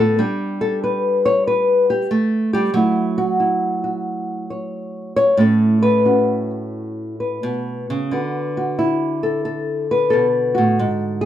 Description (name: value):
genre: solo jazz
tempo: 85-95 BPM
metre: 4/4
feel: swing 68% on 8ths, rubato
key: D major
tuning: A4 = 439 Hz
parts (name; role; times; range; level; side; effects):
- nylon-string guitar; solo; 0.0-11.3 s; G#2 to C#5; -16 LUFS; equal; none
room: light reverb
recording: dark, warm production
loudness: -16 LUFS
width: side -11 dB against mid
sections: 0.0-8.1 A section; 8.1-11.3 B section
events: nylon-string guitar solo 0.0-8.1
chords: 0.2 Gsus2; 2.7 F#m7; 5.4 A69; 8.1 D69